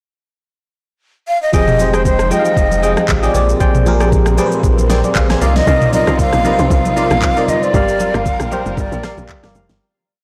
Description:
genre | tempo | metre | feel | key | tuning
amapiano | 116 BPM | 4/4 | swing 55% on 16ths | F dorian | A4 = 439 Hz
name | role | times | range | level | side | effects
breathy jazz flute | melody | 1.3-9.5 s | C5 to F5 | -20 LUFS | equal | tape echo
FM electric piano | accompaniment | 1.5-9.8 s | Bb2 to Ab5 | -20 LUFS | equal | chorus, phaser
warm studio string section | sustained chords | 1.5-9.8 s | C3 to G5 | -26 LUFS | equal | none
percussive organ stab | stabs | 1.5-9.7 s | G4 to G5 | -26 LUFS | equal | chorus, tape echo
warm sub bass | bass | 1.5-5.6 s | F1 to C2 | -19 LUFS | equal | none
smooth R&B drum kit | drums | 1.5-9.8 s | handclaps, kick drum, rim click, shaker, snare drum, toms | -20 LUFS | equal | none
congas | percussion | 1.5-9.7 s | none | -28 LUFS | equal | none
tight log drum bass | bass | 5.7-9.8 s | F1 to C2 | -22 LUFS | equal | none
room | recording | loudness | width
light reverb | blown-out, overdriven recording, overdrive | -14 LUFS | mono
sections
0.0-1.5 pickup bar; 1.5-9.8 groove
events
fade-out 7.7-9.8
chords
0.0 N.C.; 1.5 Fm9; 3.3 Bb13; 5.4 Cm11; 7.7 Gm7

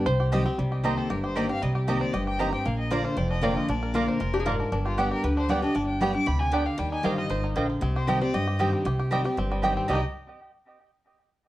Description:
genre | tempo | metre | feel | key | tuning
bluegrass | 232 BPM | 4/4 | straight | C minor | A4 = 435 Hz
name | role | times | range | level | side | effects
bluegrass banjo | melody | 0.0-10.0 s | G3 to C5 | -33 LUFS | equal | none
picked steel-string acoustic guitar | accompaniment | 0.0-10.0 s | F2 to G4 | -28 LUFS | left 1 dB | none
upright bass | bass | 0.1-10.0 s | F1 to G2 | -29 LUFS | equal | none
mandolin | stabs | 0.3-10.0 s | Bb3 to Bb5 | -30 LUFS | right 3 dB | tape echo
clear fiddle | melody | 0.8-10.0 s | F4 to D6 | -33 LUFS | left 1 dB | none
lap resonator guitar | second line | 4.3-4.8 s | G4 to Bb4 | -30 LUFS | left 3 dB | none
room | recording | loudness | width
moderate studio reverb, RT60 0.7 s | worn, warbling old tape, cassette tape, warbly pitch drift | -23 LUFS | side -15 dB against mid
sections
0.6-8.9 A section; 8.9-9.9 B section; 9.9-10.9 C section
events
none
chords
0.1 Cm; 0.6 Cm7; 2.7 Bb; 4.7 G; 6.8 Ebadd9; 7.8 Cm

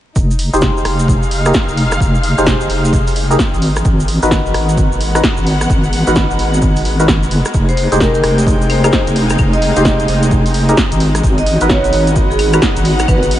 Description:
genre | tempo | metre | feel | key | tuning
UK garage, two-step garage | 130 BPM | 4/4 | swing 63% on 16ths | F minor | A4 = 442 Hz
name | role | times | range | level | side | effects
deep soft wobble bass | bass | 0.2-13.4 s | F1 to Ab1 | -15 LUFS | equal | chorus
electronic kick drum | drums | 0.2-13.2 s | none | -16 LUFS | equal | studio reverb
maracas | percussion | 0.2-13.3 s | none | -30 LUFS | right 3 dB | none
rich symphonic string section | texture | 0.2-13.4 s | Ab3 to Gb5 | -23 LUFS | left 1 dB | sidechain pumping
punchy analog drum machine | drums | 0.4-13.4 s | claves, hi-hat, rim click, snare drum | -19 LUFS | equal | studio reverb
percussive organ stab | stabs | 0.5-12.6 s | Eb4 to C5 | -18 LUFS | equal | lush chorus, ping-pong delay
airy breathy pad | sustained chords | 7.5-13.4 s | Ab3 to G5 | -22 LUFS | equal | chorus, sidechain pumping
vibraphone with hard mallets | melody | 7.7-13.2 s | Ab4 to Eb5 | -19 LUFS | right 1 dB | ping-pong delay
room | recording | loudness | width
light reverb, digital ambience | vinyl crackle, nothing above 10.3 kHz | -11 LUFS | side -13 dB against mid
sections
0.2-13.4 A section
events
none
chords
0.2 Fm7; 3.6 Abm7; 7.5 Fm7; 11.0 Abm7

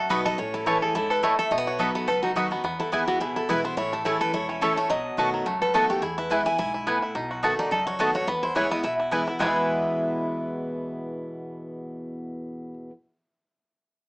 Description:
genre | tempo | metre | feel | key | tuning
bluegrass | 213 BPM | 4/4 | swing 55% on 8ths | E major | A4 = 439 Hz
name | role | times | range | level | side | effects
picked steel-string acoustic guitar | melody | 0.0-12.7 s | E4 to G#5 | -28 LUFS | equal | none
picked steel-string acoustic guitar | accompaniment | 0.0-12.9 s | E2 to F#4 | -31 LUFS | equal | none
bluegrass banjo | arpeggios | 0.0-12.8 s | F#3 to A4 | -28 LUFS | equal | tape echo
upright bass | bass | 0.0-12.7 s | E1 to E2 | -42 LUFS | equal | none
mandolin | stabs | 0.1-12.9 s | A3 to B5 | -26 LUFS | equal | none
room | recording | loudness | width
moderate studio reverb, RT60 0.6 s | small speaker sound | -22 LUFS | side -32 dB against mid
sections
0.0-7.2 A section; 7.2-9.4 B section; 9.4-11.7 C section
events
none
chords
0.4 A; 1.5 B; 2.6 E; 3.8 A; 4.9 B7; 6.0 E; 7.2 B7; 8.3 E

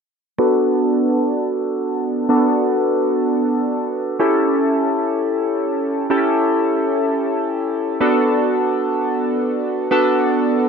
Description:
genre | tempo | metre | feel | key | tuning
pop | free time | none | none | B minor | A4 = 442 Hz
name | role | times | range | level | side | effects
chorused retro synth keys | accompaniment | 0.4-10.7 s | B3 to A4 | -16 LUFS | equal | low-pass filter
room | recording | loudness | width
moderate plate reverb, RT60 2.3 s | none | -16 LUFS | side -6 dB against mid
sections
0.4-10.7 A section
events
filter sweep on synth keys 0.4-10.7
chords
0.4 Bm7; 4.2 A7; 8.0 Bm7

